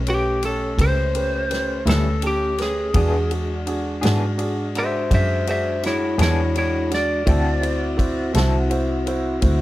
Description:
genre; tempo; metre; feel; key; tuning
slow blues; 56 BPM (dotted quarters); 12/8; straight; unclear; A4 = 438 Hz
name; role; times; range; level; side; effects
mellow tonewheel organ; sustained chords; 0.0-9.6 s; G#3 to F#4; -28 LUFS; left 1 dB; slow rotary speaker
dark double bass; bass; 0.0-9.6 s; B1 to G#2; -22 LUFS; equal; none
lightly driven lead guitar; melody; 0.1-9.1 s; E4 to E5; -23 LUFS; left 1 dB; none
warm upright piano; accompaniment; 0.1-9.6 s; C#4 to C#5; -29 LUFS; right 3 dB; none
natural country drum kit; drums; 0.1-9.6 s; kick drum, ride cymbal, snare drum; -26 LUFS; equal; none
electric guitar through a small old amp; accompaniment; 1.9-8.6 s; A2 to A4; -28 LUFS; left 3 dB; tremolo
room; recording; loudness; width
little or no reverb; none; -18 LUFS; side -16 dB against mid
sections
0.0-9.6 A section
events
none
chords
0.0 A7; 3.0 E7; 7.3 D7

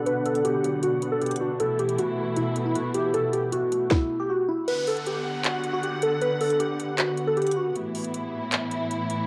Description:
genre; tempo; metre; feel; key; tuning
hip hop, trap; 156 BPM; 4/4; half-time; B minor; A4 = 440 Hz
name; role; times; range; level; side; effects
glassy digital keys; melody; 0.0-7.7 s; E4 to B4; -28 LUFS; equal; chorus, low-pass filter, cassette tape, tape echo
dark concert grand piano; accompaniment; 0.0-4.7 s; B2 to E4; -35 LUFS; equal; low-pass filter, cassette tape
dark symphonic string section; sustained chords; 0.0-9.3 s; A2 to F#5; -32 LUFS; equal; low-pass filter, cassette tape
trap drum kit; drums; 0.1-9.2 s; crash cymbal, handclaps, hi-hat, kick drum, rim click, snare drum; -31 LUFS; equal; none
downlifter; sound effects; 4.7-7.8 s; none; -43 LUFS; equal; none
room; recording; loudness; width
light reverb; home recording on cassette; -26 LUFS; mono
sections
0.0-4.7 A section; 4.7-9.3 B section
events
filter sweep 0.0-4.7; kick muted 4.7-9.3; break 7.8-9.3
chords
0.0 Bm; 1.6 Asus2/B; 4.7 Bm; 7.8 Asus2

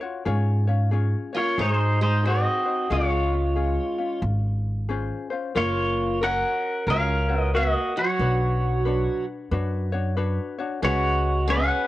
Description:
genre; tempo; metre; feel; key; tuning
Hawaiian; 91 BPM; 4/4; swing 63% on 8ths; Db major, F# major from 5.6 s; A4 = 440 Hz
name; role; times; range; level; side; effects
ukulele; accompaniment; 0.0-11.9 s; Db4 to Db5; -31 LUFS; left 5 dB; cassette tape
upright bass; bass; 0.3-11.7 s; F#1 to Ab2; -24 LUFS; equal; none
picked steel-string acoustic guitar; second line; 1.3-11.9 s; F#3 to C#4; -32 LUFS; right 6 dB; cassette tape
pedal steel guitar; melody; 1.4-11.9 s; Eb4 to F#5; -24 LUFS; equal; cassette tape
room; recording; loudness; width
light reverb, small room ambience; home recording on cassette; -21 LUFS; side -16 dB against mid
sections
0.0-5.6 A section; 5.6-11.9 B section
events
none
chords
0.3 Db/Ab; 1.6 Ab7; 2.9 Dbmaj7; 5.6 F#maj7; 8.2 Bmadd9; 10.8 C#7sus4

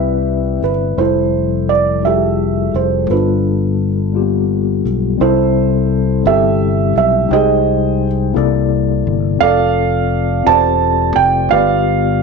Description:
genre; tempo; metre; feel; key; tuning
slow gospel; 57 BPM (dotted quarters); 6/8; straight; C major; A4 = 440 Hz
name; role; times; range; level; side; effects
felt-muted upright piano; melody; 0.0-12.2 s; D4 to A5; -15 LUFS; right 10 dB; none
mellow tine electric piano; accompaniment; 0.0-12.2 s; G2 to G5; -17 LUFS; left 12 dB; slow stereo tremolo
fingered electric bass; bass; 0.0-12.2 s; E1 to C2; -18 LUFS; equal; none
room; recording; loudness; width
wet echo chamber reverb, RT60 1.3 s, studio reverb; 1960s-style stereo with parts hard left and right; -12 LUFS; side -4 dB against mid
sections
0.0-5.2 A section; 5.2-12.2 B section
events
none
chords
0.0 Cmaj9; 1.0 Fmaj9; 3.1 G9; 5.2 C6; 7.3 Abmaj7/C; 8.4 C13; 9.4 F6; 11.5 G7

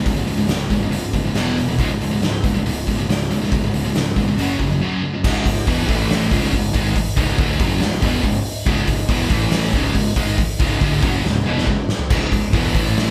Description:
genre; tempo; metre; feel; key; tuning
heavy metal; 140 BPM; 4/4; straight; C# minor; A4 = 440 Hz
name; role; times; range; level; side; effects
scooped high-gain guitar; riff; 0.0-13.1 s; C#2 to A3; -26 LUFS; equal; distortion
sludgy distorted guitar; riff; 0.0-13.1 s; C#2 to A3; -24 LUFS; equal; overdrive
fuzz picked electric bass; bass; 0.0-13.1 s; C#1 to A1; -28 LUFS; equal; overdrive
big rock drum kit; drums; 0.1-13.1 s; crash cymbal, hi-hat, kick drum, snare drum, toms; -23 LUFS; equal; none
room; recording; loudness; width
moderate large studio reverb, RT60 1.1 s; band playing live in one room; -19 LUFS; mono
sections
0.0-5.2 A section; 5.2-13.1 B section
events
break 4.8-5.2; half time 5.2-13.1; drum fill 11.2-12.1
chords
0.0 C#5; 1.4 E5; 1.8 C#5; 4.4 F#5; 5.2 C#m; 5.9 A5; 6.3 C#m; 9.3 A5; 9.7 C#m

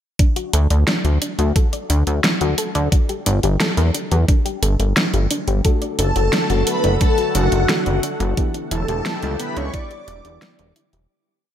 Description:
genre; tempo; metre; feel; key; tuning
synthwave; 88 BPM; 4/4; straight; D major; A4 = 440 Hz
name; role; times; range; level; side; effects
soft round pluck; arpeggios; 0.2-11.1 s; B3 to D5; -27 LUFS; left 4 dB; chorus, diffuse ambient delay
electronic kick drum; drums; 0.2-9.9 s; none; -16 LUFS; equal; overdrive
pop drum kit; drums; 0.2-11.1 s; hi-hat, snare drum; -22 LUFS; equal; overdrive
chorused synth bass; bass; 0.5-11.1 s; E1 to E2; -17 LUFS; equal; none
lush unison pad; sustained chords; 6.0-11.1 s; D3 to A4; -28 LUFS; equal; chorus, sidechain pumping
mellow FM electric piano; stabs; 5.6-11.1 s; E3 to A4; -30 LUFS; left 2 dB; none
wide unison lead; melody; 6.0-10.7 s; F#4 to D5; -23 LUFS; left 1 dB; analog chorus, vintage 12-bit sampler grit, tape echo
string machine, violins; second line; 6.0-10.7 s; F#5 to D6; -30 LUFS; right 1 dB; ensemble chorus, cassette tape, diffuse ambient delay
room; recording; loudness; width
light reverb; none; -16 LUFS; side -10 dB against mid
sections
0.2-11.1 verse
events
fade-out 7.5-11.1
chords
0.2 D; 2.9 Gmadd9; 5.6 D/F#; 8.4 Em7

